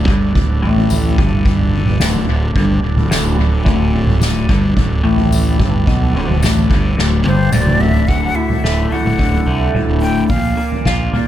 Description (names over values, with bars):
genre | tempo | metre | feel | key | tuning
psychedelic rock | 109 BPM | 4/4 | straight | D major | A4 = 439 Hz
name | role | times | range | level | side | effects
overdriven combo organ | sustained chords | 0.0-11.3 s | F3 to D5 | -30 LUFS | right 3 dB | none
electric guitar through a small old amp | riff | 0.0-11.3 s | D2 to F4 | -18 LUFS | left 2 dB | phaser, analog delay
fuzz fingered electric bass | bass | 0.0-11.1 s | D1 to C2 | -18 LUFS | equal | overdrive
tanpura | drone | 0.0-11.3 s | D2 to D3 | -28 LUFS | left 1 dB | none
soft-mallet drum kit | drums | 0.1-11.3 s | kick drum, snare drum, toms | -16 LUFS | right 1 dB | none
tambourine | percussion | 0.9-7.7 s | none | -31 LUFS | left 9 dB | none
breathy jazz flute | melody | 7.3-11.3 s | C5 to G5 | -21 LUFS | left 2 dB | analog delay
room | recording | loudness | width
light reverb, studio reverb | echo-heavy mix | -12 LUFS | side -12 dB against mid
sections
0.0-8.1 A section; 8.1-11.3 B section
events
drum fill 7.0-8.1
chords
0.0 D; 10.3 Bb